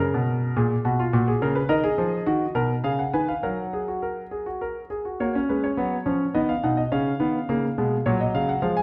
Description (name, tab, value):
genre	classical, baroque-style 3-part fugue for grand piano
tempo	105 BPM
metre	3/4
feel	straight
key	F# major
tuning	A4 = 440 Hz
part	clear concert grand piano	solo	0.0-8.8 s	Bb2 to G#5	-24 LUFS	equal	none
room	wet recital hall reverb, RT60 1.6 s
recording	none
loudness	-24 LUFS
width	mono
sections	0.0-5.2 A section; 5.2-8.8 B section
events	none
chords	0.0 Db7 (rootless); 1.1 Gb/Bb; 1.7 D#m; 2.8 C#7; 3.4 F#; 6.3 B; 6.9 C#; 8.1 F#/A#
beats	0.57 1.14 | 1.70 2.27 2.84 | 3.43 4.02 4.61 | 5.20 5.77 6.35 | 6.92 7.49 8.05 | 8.62